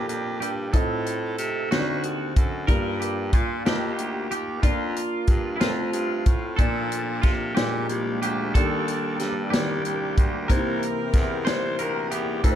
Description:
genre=slow gospel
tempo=62 BPM (dotted quarters)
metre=6/8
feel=straight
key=Bb major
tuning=A4 = 440 Hz
part: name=twangy electric guitar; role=melody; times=0.0-12.6 s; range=E4 to C5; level=-31 LUFS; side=right 2 dB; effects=wide subtle chorus
part: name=warm saxophone section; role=melody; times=0.0-12.6 s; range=A3 to C5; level=-32 LUFS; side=equal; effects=slapback echo
part: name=warm upright piano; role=accompaniment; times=0.0-12.6 s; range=G2 to Eb5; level=-30 LUFS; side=left 1 dB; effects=none
part: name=bright baritone saxophone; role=bass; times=0.0-12.6 s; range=C2 to C3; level=-30 LUFS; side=equal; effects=none
part: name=natural country drum kit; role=drums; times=0.1-12.6 s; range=hi-hat, kick drum, snare drum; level=-23 LUFS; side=equal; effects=none
part: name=overdriven tonewheel organ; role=sustained chords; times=6.6-12.6 s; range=E3 to A4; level=-32 LUFS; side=right 2 dB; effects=slow rotary speaker, chorus vibrato
room=light reverb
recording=none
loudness=-22 LUFS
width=side -10 dB against mid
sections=0.0-12.6 A section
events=none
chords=0.0 Bbmaj7; 0.7 F7/A; 1.7 D7b9; 2.7 Gm7; 3.7 F9sus4; 4.6 Bb/F; 5.6 F; 6.6 Bbmaj7; 7.6 Bb7; 8.5 Ebmaj7; 10.5 C7

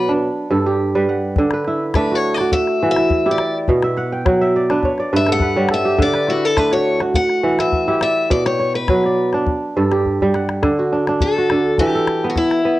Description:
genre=west african traditional, West African string and xylophone music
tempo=104 BPM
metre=4/4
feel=straight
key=D major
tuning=A4 = 438 Hz
part: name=picked steel-string acoustic guitar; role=melody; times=0.0-12.8 s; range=E4 to F#5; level=-19 LUFS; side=left 3 dB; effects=cassette tape
part: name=kora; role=arpeggios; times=0.0-12.8 s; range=G2 to G5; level=-16 LUFS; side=right 2 dB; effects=cassette tape
part: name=calabash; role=percussion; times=1.4-12.6 s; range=none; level=-21 LUFS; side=left 2 dB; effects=none
room=moderate spring reverb, RT60 1.6 s, small room reverb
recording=home recording on cassette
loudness=-15 LUFS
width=side -16 dB against mid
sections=0.0-10.6 A section; 10.6-12.8 B section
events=steel-string acoustic guitar solo 0.0-10.6; kora fill 3.8-6.0; drum fill 10.0-10.6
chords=0.2 G; 1.4 D; 2.5 Em; 3.7 Bm; 4.8 N.C.; 6.0 D; 7.2 Em; 8.3 Bm; 9.5 Gsus2; 10.6 D; 11.8 Em

